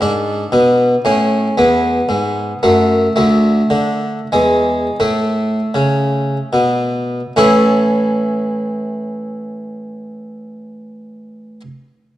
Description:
classical, baroque-style suite movement for harpsichord; 69-118 BPM; 3/4; rubato; A major; A4 = 439 Hz
harpsichord; solo; 0.0-11.6 s; D2 to C#5; -14 LUFS; equal
wet recital hall reverb, RT60 1.5 s; worn, warbling old tape, cassette tape, warbly pitch drift; -13 LUFS; side -14 dB against mid
0.0-7.4 A section; 7.4-12.2 B section
slowing down 2.4-7.4
0.0 G#dim; 1.0 A; 1.6 E; 2.6 F#m; 3.2 D5; 4.3 E; 5.0 A
| 0.01 0.54 1.05 | 1.57 2.10 2.62 | 3.15 3.70 4.30 | 4.99 5.74 6.52 | 7.36 8.18 9.00 | 9.84 10.65 11.46

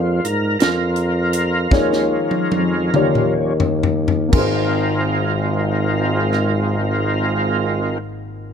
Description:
slow gospel; 40-57 BPM (dotted quarters); 6/8; straight; Ab major; A4 = 440 Hz
dark grand piano; accompaniment; 0.0-8.5 s; Ab1 to D5; -22 LUFS; left 3 dB
overdriven tonewheel organ; sustained chords; 0.0-8.0 s; F3 to Bb4; -21 LUFS; right 3 dB; slow rotary speaker, chorus vibrato
warm tuba; bass; 0.0-8.0 s; Ab1 to Ab2; -21 LUFS; equal
tight funk drum kit; drums; 0.2-6.6 s; crash cymbal, hi-hat, kick drum, rim click, snare drum, toms; -20 LUFS; left 2 dB
little or no reverb; -16 LUFS; side -7 dB against mid
0.0-4.3 A section; 4.3-8.5 B section
slowing down 0.0-4.3; tonewheel organ solo 0.0-4.3; drum fill 1.7-4.3
0.0 Bb7/F; 1.7 Eb7sus4; 2.9 Eb7; 4.3 Ab69
0.60 | 1.72 2.94 | 4.33 5.83 | 7.33

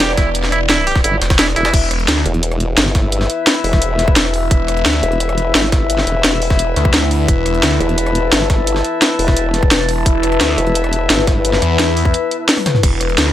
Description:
dark technical drum and bass; 173 BPM; 4/4; straight; E minor; A4 = 440 Hz
dark analog pad; sustained chords; 0.0-13.3 s; E4 to A5; -22 LUFS; left 1 dB; chorus, phaser, sidechain pumping
twangy electric guitar; arpeggios; 0.0-1.7 s; E4 to G4; -19 LUFS; right 3 dB; sidechain pumping, digital delay
formant-sweep wobble bass; bass; 0.0-11.6 s; E1 to G1; -18 LUFS; equal; chorus
drum and bass drum kit; drums; 0.0-13.3 s; crash cymbal, hi-hat, rim click, snare drum, toms; -16 LUFS; equal
jungle sampler-style drum kit; drums; 0.0-13.3 s; hi-hat, snare drum; -24 LUFS; equal; overdrive, high-pass filter on snare, high-pass filter on hats
warm brass ensemble; stabs; 0.2-12.4 s; E4 to E5; -21 LUFS; left 6 dB; digital delay
phased detuned saw bass; bass; 0.2-13.3 s; E1 to E2; -18 LUFS; equal; phaser, tube saturation, sidechain pumping
electronic kick drum; drums; 0.2-12.9 s; -14 LUFS; equal
little or no reverb; -12 LUFS; side -12 dB against mid
0.0-1.7 A section; 1.7-13.3 A section
drop 0.0-1.7, 1.7-13.3; kick drops out 1.4-1.7; drum fill 12.6
0.0 E5
0.00 | 0.35 0.69 1.04 1.39 | 1.74 2.08 2.43 2.78 | 3.12 3.47 3.82 4.16 | 4.51 4.86 5.20 5.55 | 5.90 6.24 6.59 6.94 | 7.29 7.63 7.98 8.32 | 8.67 9.02 9.37 9.71 | 10.06 10.41 10.75 11.10 | 11.45 11.79 12.14 12.49 | 12.83 13.18

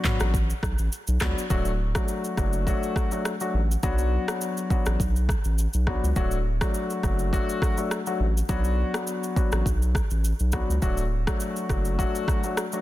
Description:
afrobeats; 103 BPM; 4/4; swing 55% on 16ths; D major; A4 = 440 Hz
warm baby grand piano; accompaniment; 0.0-12.8 s; F#3 to F#4; -29 LUFS; left 3 dB
afro-pop drum kit; drums; 0.0-12.8 s; handclaps, kick drum, rim click, shaker, toms; -27 LUFS; equal; soft clipping on snare
saturated sub bass; bass; 0.2-12.0 s; D1 to C#2; -24 LUFS; equal
digital ambience; dense, heavily limited modern master; -23 LUFS; side -15 dB against mid
0.0-1.5 A section; 1.5-12.8 B section
0.0 Bm; 1.5 D; 3.8 Bm; 6.2 D; 8.5 Bm; 10.8 D
0.34 0.92 | 1.50 2.08 2.67 3.25 | 3.83 4.42 5.00 5.58 | 6.16 6.75 7.33 7.91 | 8.49 9.07 9.66 10.24 | 10.82 11.40 11.99 12.57

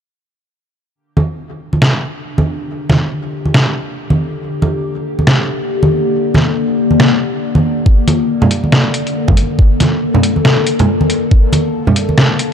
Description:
deep dubstep; 139 BPM; 4/4; swing 59% on 16ths, half-time; G minor; A4 = 440 Hz
overtone-sweeping drone; sustained chords; 2.3-12.5 s; D3 to A4; -17 LUFS; left 3 dB; chorus, built-in reverb, phaser
congas; percussion; 1.2-12.2 s; -16 LUFS; right 1 dB
trip hop sampler-style drum kit; drums; 1.8-12.5 s; hi-hat, snare drum; -14 LUFS; equal
electronic kick drum; drums; 7.9-11.4 s; -9 LUFS; equal; overdrive
light reverb; dark, warm production; -11 LUFS; side -8 dB against mid
1.0-12.5 A section
1.0 Gm
| 0.95 1.39 1.82 2.25 | 2.68 3.11 3.54 3.98 | 4.41 4.84 5.27 5.70 | 6.13 6.57 7.00 7.43 | 7.86 8.29 8.72 9.16 | 9.59 10.02 10.45 10.88 | 11.31 11.75 12.18

